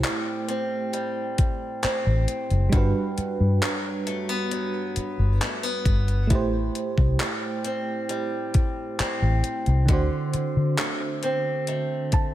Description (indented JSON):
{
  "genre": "contemporary R&B",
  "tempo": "67 BPM",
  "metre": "4/4",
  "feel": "straight",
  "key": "A dorian",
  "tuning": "A4 = 440 Hz",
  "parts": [
    { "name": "FM electric piano with tremolo", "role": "accompaniment", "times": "0.0-12.3 s", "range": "D3 to A5", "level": "-30 LUFS", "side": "right 4 dB", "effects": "none" },
    { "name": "picked swing-style acoustic guitar", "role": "arpeggios", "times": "0.0-12.3 s", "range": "G2 to C4", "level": "-29 LUFS", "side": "left 1 dB", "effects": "tape echo" },
    { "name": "gated 80s digital drum machine", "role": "drums", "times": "0.0-12.3 s", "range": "handclaps, hi-hat, kick drum", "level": "-25 LUFS", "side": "left 1 dB", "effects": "gated reverb, overdrive" },
    { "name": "vintage muted fingered electric bass", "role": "bass", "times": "1.8-12.2 s", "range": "F#1 to D3", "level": "-22 LUFS", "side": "left 1 dB", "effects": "none" }
  ],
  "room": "digital ambience",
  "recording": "none",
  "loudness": "-22 LUFS",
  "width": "side -13 dB against mid",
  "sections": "0.0-12.3 A section",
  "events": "FM electric piano fill 11.7-12.3",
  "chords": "0.0 Am7; 2.7 Gmaj7; 6.3 Am7; 9.9 D7"
}